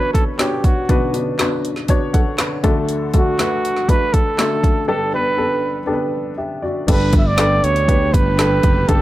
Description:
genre	piano-driven pop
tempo	120 BPM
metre	4/4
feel	straight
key	unclear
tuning	A4 = 440 Hz
part	breathy trumpet	melody	0.0-9.0 s	F#4 to E5	-20 LUFS	right 2 dB	none
part	warm upright piano	accompaniment	0.0-9.0 s	G1 to F#5	-20 LUFS	left 2 dB	none
part	deep house drum kit	drums	0.1-9.0 s	crash cymbal, handclaps, hi-hat, kick drum, snare drum	-17 LUFS	equal	none
part	warm chamber string section	sustained chords	6.9-9.0 s	D3 to G4	-28 LUFS	right 2 dB	none
part	fingered electric bass	bass	6.9-9.0 s	F#1 to D2	-18 LUFS	equal	none
room	light reverb, studio reverb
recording	none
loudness	-15 LUFS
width	side -15 dB against mid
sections	0.0-6.9 A section; 6.9-9.0 B section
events	break 4.9-6.9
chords	0.0 Bm; 2.6 D; 4.9 Gadd9

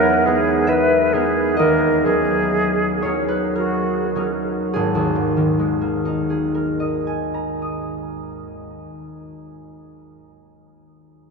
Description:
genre	classical, impressionist duo for flute and harp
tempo	49-71 BPM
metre	3/4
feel	rubato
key	G# minor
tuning	A4 = 438 Hz
part	silver concert flute	melody	0.0-4.1 s	F#4 to B4	-21 LUFS	equal	none
part	concert harp	accompaniment	0.0-9.8 s	G#1 to D#6	-19 LUFS	equal	none
room	wet cathedral reverb, RT60 6.9 s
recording	in a vast, echoing space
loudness	-17 LUFS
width	side -4 dB against mid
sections	0.0-4.8 A section; 4.8-8.3 B section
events	slowing down 0.0-4.8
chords	0.0 Emaj7#11; 1.6 D#m7; 4.8 G#sus2

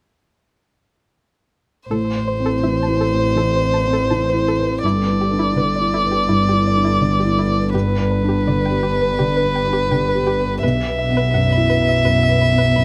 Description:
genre	neoclassical piano and strings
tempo	83 BPM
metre	4/4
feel	rubato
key	unclear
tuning	A4 = 440 Hz
part	rich violin	melody	1.9-12.8 s	B4 to E5	-22 LUFS	equal	none
part	felt-muted upright piano	accompaniment	1.9-12.8 s	B1 to C5	-22 LUFS	equal	none
part	ethereal airy pad	sustained chords	3.3-12.8 s	B3 to B4	-33 LUFS	equal	none
part	string-like resonator pluck	arpeggios	1.9-12.8 s	E4 to B5	-29 LUFS	equal	chorus, slapback echo
part	warm double bass	bass	1.9-12.8 s	G1 to B1	-24 LUFS	equal	none
room	little or no reverb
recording	none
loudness	-18 LUFS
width	mono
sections	1.9-12.8 A section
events	none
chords	1.9 Am; 4.8 Em7/G; 7.7 G; 10.6 Bsus4

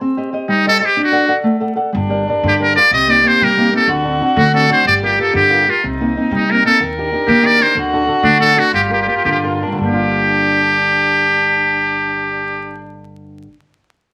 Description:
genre	italian folk, Italian serenade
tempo	106-125 BPM (dotted quarters)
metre	6/8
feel	straight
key	G minor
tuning	A4 = 444 Hz
part	nylon-string guitar	accompaniment	0.0-13.6 s	G2 to F#5	-20 LUFS	equal	none
part	trumpet with metal mute	melody	0.5-12.8 s	D4 to Eb5	-15 LUFS	equal	none
part	upright bass	bass	1.9-13.5 s	G1 to Eb3	-27 LUFS	equal	none
part	dark violin	second line	2.0-12.8 s	D4 to Bb4	-23 LUFS	equal	none
room	light reverb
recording	vinyl crackle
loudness	-14 LUFS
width	mono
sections	0.0-9.8 A section; 9.8-12.0 B section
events	slowing down 7.8-9.8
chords	0.0 Cm; 1.0 D; 1.9 Gm; 2.9 Cm7; 3.9 D7; 4.8 Gm7; 5.8 Cm7; 6.8 Ebmaj7; 7.8 D; 8.7 Gm7

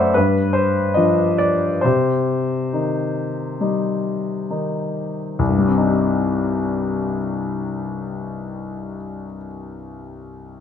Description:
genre	classical, romantic nocturne for solo piano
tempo	32-40 BPM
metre	4/4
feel	rubato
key	C minor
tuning	A4 = 437 Hz
part	warm grand piano	solo	0.0-10.6 s	C2 to F#5	-19 LUFS	left 2 dB	none
room	light reverb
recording	none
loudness	-18 LUFS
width	side -8 dB against mid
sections	0.0-5.4 A section; 5.4-10.6 B section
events	slowing down 0.0-5.4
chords	0.1 G5; 1.8 Cm

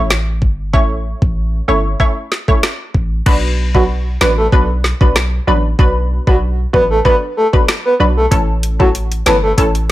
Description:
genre	dancehall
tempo	95 BPM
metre	4/4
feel	straight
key	B minor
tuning	A4 = 441 Hz
part	punchy chord stab	accompaniment	0.0-9.7 s	E3 to C#5	-17 LUFS	equal	chorus
part	warm 808-style bass	bass	0.0-9.9 s	G1 to B1	-16 LUFS	equal	none
part	island pop drum kit	drums	0.1-9.9 s	crash cymbal, hi-hat, kick drum, rim click, snare drum	-14 LUFS	equal	none
part	breathy flute-like synth lead	melody	3.7-9.5 s	F#4 to B4	-15 LUFS	equal	chorus, digital delay
room	little or no reverb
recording	none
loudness	-12 LUFS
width	side -15 dB against mid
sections	0.0-3.3 A section; 3.3-9.9 B section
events	none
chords	0.0 A; 3.3 Bm; 8.3 A

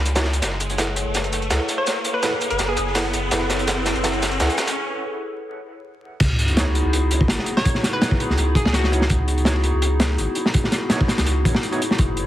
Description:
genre	drum and bass, jungle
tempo	166 BPM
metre	4/4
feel	swing 53% on 16ths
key	C# minor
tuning	A4 = 440 Hz
part	warbly tape-like pad	sustained chords	0.0-12.3 s	B3 to C#5	-28 LUFS	left 1 dB	chorus, built-in reverb
part	soft dub sub bass	bass	0.0-12.3 s	F#1 to C#2	-22 LUFS	equal	tube saturation
part	riser and sub drop	sound effects	0.0-7.7 s	none	-28 LUFS	equal	none
part	crunchy breakbeat drum kit	drums	0.1-12.3 s	crash cymbal, hi-hat, kick drum, snare drum	-21 LUFS	equal	high-pass filter on kick, high-pass filter on hats, high-pass filter on cymbals, high-pass filter on snare, high-pass filter on room
part	dusty soul sampler-style drum kit	drums	0.1-4.8 s	hi-hat, shaker, snare drum	-29 LUFS	right 1 dB	overdrive, high-pass filter on perc, high-pass filter on snare, high-pass filter on hats
part	overdriven tine electric piano	stabs	0.2-11.8 s	B3 to F#5	-29 LUFS	right 2 dB	medium tremolo, low-pass filter, dub echo
part	hollow square pluck	melody	1.8-2.8, 7.6-9.1 s	F#4 to C#5	-26 LUFS	equal	chorus, dub echo
room	moderate digital room reverb, RT60 1.1 s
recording	heavily compressed radio sound, multiband compression, vinyl crackle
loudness	-18 LUFS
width	side -13 dB against mid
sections	0.0-6.2 A section; 6.2-12.3 B section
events	build-up 0.0-6.2; riser 0.0-4.8; filter sweep on ambient pad 0.0-6.2; drum fill 0.4-4.8; break 4.8-6.2; drop 6.2-12.3; impact 6.2-7.7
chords	0.4 F#m11; 6.2 C#m11

